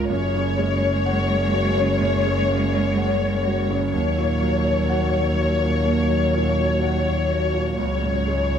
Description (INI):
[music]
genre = neoclassical piano and strings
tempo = 63 BPM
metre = 4/4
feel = rubato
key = F# major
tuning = A4 = 443 Hz
[part]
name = muted symphonic violin section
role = melody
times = 0.0-8.6 s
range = C#5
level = -24 LUFS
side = left 4 dB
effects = none
[part]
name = muted cello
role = second line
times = 0.0-8.6 s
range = F#3 to G#3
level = -28 LUFS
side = right 5 dB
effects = none
[part]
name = warm grand piano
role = accompaniment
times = 0.0-8.6 s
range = C#2 to F#5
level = -26 LUFS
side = right 4 dB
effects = none
[part]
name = warbly tape-like pad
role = sustained chords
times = 0.0-8.6 s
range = G#3 to C#5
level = -34 LUFS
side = left 2 dB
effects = none
[part]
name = muted double bass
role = bass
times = 0.0-8.6 s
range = F#1 to D#2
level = -23 LUFS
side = left 1 dB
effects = none
[sound]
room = light reverb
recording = close, detailed microphones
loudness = -19 LUFS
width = side -8 dB against mid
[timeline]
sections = 0.0-8.6 A section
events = none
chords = 0.1 F#sus2; 3.9 D#m7; 7.8 C#